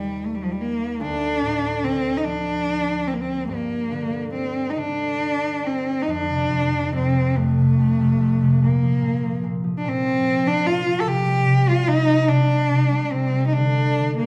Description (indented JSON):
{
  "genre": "celtic folk, Celtic slow air",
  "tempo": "48 BPM (dotted quarters)",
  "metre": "6/8",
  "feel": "rubato",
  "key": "unclear",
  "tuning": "A4 = 444 Hz",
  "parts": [
    { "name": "warm cello", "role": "melody", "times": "0.0-14.3 s", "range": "F3 to A4", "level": "-24 LUFS", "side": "equal", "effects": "none" },
    { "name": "concert harp", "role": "accompaniment", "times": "0.0-14.3 s", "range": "D2 to G5", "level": "-24 LUFS", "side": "equal", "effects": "none" }
  ],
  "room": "wet large studio reverb, RT60 1.4 s",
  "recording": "band playing live in one room",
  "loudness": "-21 LUFS",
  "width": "mono",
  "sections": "0.0-6.1 A section; 6.1-14.3 B section",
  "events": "harp fill 4.8-6.1",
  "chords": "0.0 Eb; 1.0 Dm; 3.5 Gm; 6.1 F; 8.6 Bb5; 11.0 C5; 13.5 D5",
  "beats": "| 1.01 2.24 | 3.49 4.77 | 6.07 7.37 | 8.62 9.84 | 11.05 12.28 | 13.53"
}